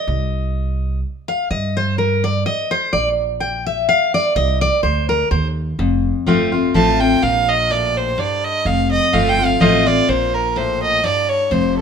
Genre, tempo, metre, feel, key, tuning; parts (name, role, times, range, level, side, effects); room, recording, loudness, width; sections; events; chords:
bluegrass; 126 BPM; 3/4; swing 54% on 8ths; A4 = 442 Hz
picked steel-string acoustic guitar; accompaniment; 0.0-11.8 s; F2 to G5; -18 LUFS; left 2 dB
upright bass; bass; 0.1-11.8 s; F1 to G2; -21 LUFS; right 1 dB
warm fiddle; melody; 6.7-11.8 s; A4 to A5; -17 LUFS; right 3 dB
light reverb; minimal, uncompressed stereo recording; -15 LUFS; side -6 dB against mid
0.0-5.8 A section; 5.8-11.8 A section
steel-string acoustic guitar solo 0.0-5.8; fiddle solo 5.8-11.8
0.1 Cm; 2.9 Bb6; 4.4 Cm; 5.8 F; 7.2 Bbmaj13; 8.7 F; 10.1 Bbmaj7sus2